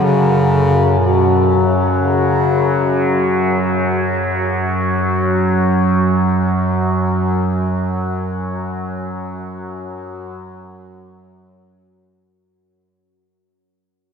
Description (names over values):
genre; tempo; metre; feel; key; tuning
dark ambient drone; free time; none; none; unclear; A4 = 441 Hz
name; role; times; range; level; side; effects
clear bass clarinet; melody; 0.0-3.3 s; B2 to C#3; -18 LUFS; left 1 dB; shimmer reverb, tape echo
overtone-sweeping drone; drone; 0.0-12.5 s; F#2 to F#3; -16 LUFS; equal; chorus, built-in reverb
room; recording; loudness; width
wet huge ambient reverb, RT60 8.7 s; in a vast, echoing space; -14 LUFS; side -6 dB against mid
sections
0.0-12.4 A section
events
fade-out 7.3-12.4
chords
none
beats
free time